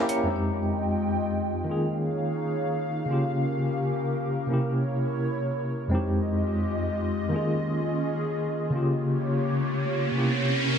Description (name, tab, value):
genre	drum and bass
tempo	free time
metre	none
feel	none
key	F minor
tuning	A4 = 440 Hz
part	mellow tine electric piano	accompaniment	0.0-10.8 s	F2 to Ab4	-26 LUFS	equal	medium tremolo, digital delay
part	airy breathy pad	sustained chords	0.0-10.8 s	Db3 to Bb5	-29 LUFS	equal	chorus
part	riser	sound effects	9.5-10.8 s	none	-29 LUFS	right 1 dB	none
room	moderate lush hall reverb, RT60 1.7 s, digital ambience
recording	none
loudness	-24 LUFS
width	side -7 dB against mid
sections	0.3-10.8 A section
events	riser 9.5-10.8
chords	0.3 Fm9; 1.7 Eb9sus4; 3.1 Gm7b5/Db; 4.5 C7b9; 5.9 Fm9; 7.3 Eb9sus4; 8.7 Gm7b5/Db; 10.1 C7b9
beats	free time